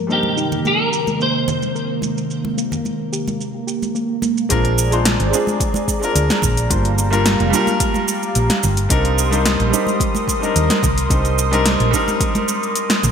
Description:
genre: sunset chillout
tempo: 109 BPM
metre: 4/4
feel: straight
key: C minor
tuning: A4 = 440 Hz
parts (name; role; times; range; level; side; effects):
- clear grand piano; accompaniment; 0.0-13.1 s; G3 to C5; -20 LUFS; right 1 dB; auto-pan, ping-pong delay
- airy breathy pad; sustained chords; 0.0-13.1 s; C3 to Eb6; -23 LUFS; left 1 dB; chorus
- clean electric guitar; melody; 0.1-3.9 s; G4 to C5; -20 LUFS; equal; ensemble chorus, ping-pong delay
- soft round pluck; arpeggios; 0.1-4.5 s; Bb3 to Bb4; -25 LUFS; right 1 dB; chorus, cassette tape, ping-pong delay
- deep house drum kit; drums; 0.1-13.1 s; hi-hat, shaker, snare drum; -21 LUFS; right 1 dB; overdrive, low-pass filter on perc, low-pass filter on hats, low-pass filter on snare, low-pass filter on room
- congas; percussion; 0.2-13.1 s; none; -27 LUFS; right 2 dB; none
- hollow-body short-scale fingered electric bass; bass; 4.5-13.1 s; F1 to Eb2; -18 LUFS; equal; none
- electronic kick drum; drums; 4.5-12.3 s; none; -22 LUFS; equal; overdrive
room: wet lush hall reverb, RT60 1.8 s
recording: bright 1980s-style digital production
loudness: -15 LUFS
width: side -7 dB against mid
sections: 0.0-4.5 A section; 4.5-13.1 B section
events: none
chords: 0.1 Cm7; 4.5 Bb7; 6.7 Gm7; 8.9 Cm7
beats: | 0.10 0.65 1.20 1.75 | 2.30 2.85 3.40 3.95 | 4.50 5.05 5.60 6.15 | 6.70 7.25 7.80 8.36 | 8.91 9.46 10.01 10.56 | 11.11 11.66 12.21 12.76

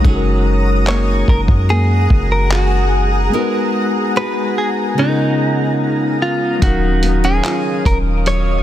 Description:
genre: contemporary R&B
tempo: 73 BPM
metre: 4/4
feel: straight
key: Eb minor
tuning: A4 = 439 Hz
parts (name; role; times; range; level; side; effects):
- mellow tine electric piano; accompaniment; 0.0-8.6 s; Db3 to F5; -20 LUFS; left 4 dB; medium stereo tremolo
- granular cloud pad; sustained chords; 0.0-8.6 s; Cb4 to Eb6; -22 LUFS; equal; built-in reverb, sidechain pumping
- flamenco guitar; arpeggios; 0.0-8.6 s; Db3 to Bb4; -23 LUFS; right 4 dB; none
- warm 808-style bass; bass; 0.0-8.6 s; Eb1 to Gb2; -16 LUFS; equal; none
- dusty soul sampler-style drum kit; drums; 0.0-8.5 s; handclaps, hi-hat, kick drum; -16 LUFS; equal; soft clipping on snare
- direct-recorded clean electric guitar; melody; 0.9-8.6 s; Eb4 to Db5; -20 LUFS; equal; tape echo
room: little or no reverb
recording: dense, heavily limited modern master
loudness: -13 LUFS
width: side -12 dB against mid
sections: 0.0-6.6 A section; 6.6-8.6 B section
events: break 3.3-6.6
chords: 0.0 Gb69; 3.3 Abm9; 5.0 Db13; 6.6 Ebm9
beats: | 0.05 0.87 1.69 2.51 | 3.33 4.16 4.98 5.80 | 6.62 7.44 8.27

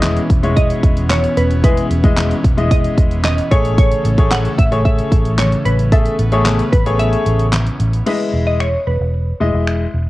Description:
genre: dance-pop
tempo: 112 BPM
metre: 4/4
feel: straight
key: E major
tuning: A4 = 440 Hz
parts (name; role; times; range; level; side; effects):
- glassy wavetable pluck; melody; 0.0-9.4 s; A4 to F#5; -22 LUFS; equal; chorus, cassette tape, analog delay
- clear concert grand piano; accompaniment; 0.0-9.8 s; G#3 to E5; -20 LUFS; left 2 dB; sidechain pumping
- airy breathy pad; sustained chords; 0.0-8.0 s; B2 to C#4; -23 LUFS; equal; chorus, sidechain pumping
- vintage muted fingered electric bass; bass; 0.0-10.1 s; E1 to A1; -18 LUFS; equal; sidechain pumping
- pop drum kit; drums; 0.0-9.8 s; crash cymbal, finger snaps, handclaps, hi-hat, kick drum, snare drum; -15 LUFS; equal; cassette tape
room: light reverb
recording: home recording on cassette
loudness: -12 LUFS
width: side -17 dB against mid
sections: 0.0-8.1 A section; 8.1-10.1 B section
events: kick muted 7.0-8.1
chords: 0.0 Emaj7; 3.5 Amaj7; 8.1 Emaj7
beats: 0.03 0.57 1.10 | 1.64 2.17 2.71 3.24 | 3.78 4.32 4.85 5.39 | 5.92 6.46 6.99 7.53 | 8.07 8.60 9.14 9.67

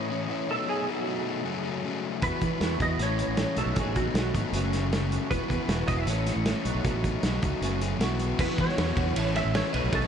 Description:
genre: indie rock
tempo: 156 BPM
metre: 4/4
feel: straight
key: unclear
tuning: A4 = 440 Hz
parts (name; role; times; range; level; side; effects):
- semi-hollow electric guitar; melody; 0.0-10.1 s; F#4 to E5; -32 LUFS; right 2 dB; ensemble chorus, ping-pong delay
- crunchy overdriven guitar; riff; 0.0-10.1 s; F#2 to F#4; -31 LUFS; left 6 dB; none
- overdriven semi-hollow guitar; riff; 2.2-10.1 s; E2 to A4; -35 LUFS; right 10 dB; analog chorus, ping-pong delay
- fingered electric bass; bass; 2.2-10.1 s; E1 to E3; -30 LUFS; right 1 dB; none
- loose indie drum kit; drums; 2.2-10.0 s; crash cymbal, hi-hat, kick drum, ride cymbal, snare drum; -30 LUFS; right 1 dB; none
room: moderate huge ambient reverb, RT60 5.8 s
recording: dreamy mix soaked in reverb, nothing above 10.7 kHz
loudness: -25 LUFS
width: side -8 dB against mid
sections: 0.0-8.4 A section; 8.4-10.1 B section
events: clean electric guitar solo 8.4-10.1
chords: 0.5 B7; 1.5 F#m; 2.2 Esus2; 3.0 A; 3.6 B7; 4.5 F#m; 5.3 Esus2; 6.1 A; 6.7 B7; 7.6 F#m; 8.0 Bsus4; 8.4 Esus2; 9.2 A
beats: 0.30 | 0.68 1.07 1.46 1.84 | 2.23 2.61 2.99 3.38 | 3.76 4.15 4.53 4.92 | 5.30 5.69 6.07 6.46 | 6.84 7.23 7.61 8.00 | 8.38 8.77 9.15 9.54 | 9.92

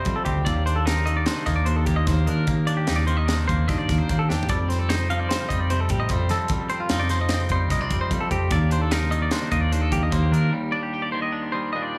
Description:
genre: math rock and midwest emo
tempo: 149 BPM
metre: 5/4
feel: straight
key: unclear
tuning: A4 = 440 Hz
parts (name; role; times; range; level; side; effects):
- twangy electric guitar; accompaniment; 0.0-12.0 s; Eb2 to G4; -30 LUFS; equal; none
- twangy electric guitar; arpeggios; 0.0-12.0 s; F4 to F5; -30 LUFS; equal; digital delay
- hollow-body short-scale picked electric bass; bass; 0.1-10.5 s; C2 to F3; -26 LUFS; equal; none
- crisp fusion drum kit; drums; 0.1-10.4 s; hi-hat, kick drum, snare drum, toms; -30 LUFS; equal; none
room: little or no reverb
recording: studio reverb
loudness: -23 LUFS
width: mono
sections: 0.0-12.0 A section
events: drum fill 4.3; break 10.5-12.0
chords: 0.5 Cm9/Eb; 4.5 F9; 8.5 Cm9/Eb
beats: 0.06 | 0.46 0.87 1.27 1.67 2.08 | 2.48 2.88 3.29 3.69 4.09 | 4.49 4.89 5.30 5.70 6.10 | 6.50 6.91 7.31 7.71 8.11 | 8.51 8.91 9.32 9.72 10.12 | 10.52 10.93 11.33 11.73

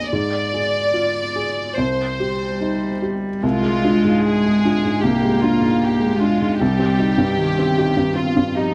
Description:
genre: neoclassical piano and strings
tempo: 71-77 BPM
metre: 4/4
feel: rubato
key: unclear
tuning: A4 = 440 Hz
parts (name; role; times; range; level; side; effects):
- rich studio violin section; melody; 0.0-8.7 s; Eb4 to Eb5; -25 LUFS; equal; none
- warm upright piano; accompaniment; 0.0-8.7 s; C2 to Ab4; -23 LUFS; equal; none
- warm cello; second line; 2.2-8.7 s; Eb3 to Bb3; -22 LUFS; equal; none
room: moderate studio reverb, RT60 0.6 s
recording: close, detailed microphones, vinyl crackle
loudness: -19 LUFS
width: mono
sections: 0.0-3.4 A section; 3.4-8.7 B section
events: none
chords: 0.1 Fm/Ab; 1.8 Cm; 3.4 Ddim/C; 6.6 Cm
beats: | 0.12 0.93 1.76 2.61 | 3.43 4.24 5.03 5.82 | 6.61 7.39 8.18

